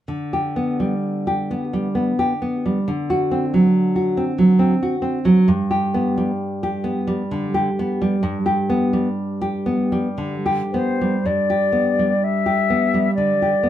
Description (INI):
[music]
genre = romantic duo for flute and classical guitar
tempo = 53-70 BPM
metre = 3/4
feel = rubato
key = G major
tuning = A4 = 440 Hz
[part]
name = nylon-string guitar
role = accompaniment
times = 0.1-13.7 s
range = G2 to G4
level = -18 LUFS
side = right 1 dB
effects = none
[part]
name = concert flute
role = melody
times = 10.7-13.7 s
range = C5 to E5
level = -19 LUFS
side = left 3 dB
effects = none
[sound]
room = wet studio reverb, RT60 0.5 s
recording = band playing live in one room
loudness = -17 LUFS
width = side -11 dB against mid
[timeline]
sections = 0.1-11.3 A section; 11.3-13.7 B section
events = none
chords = 0.1 G/D; 2.9 D7; 5.5 G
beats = | 0.07 1.02 1.96 | 2.87 3.74 4.61 | 5.49 6.40 7.32 | 8.23 9.18 10.19 | 11.26 12.23 13.17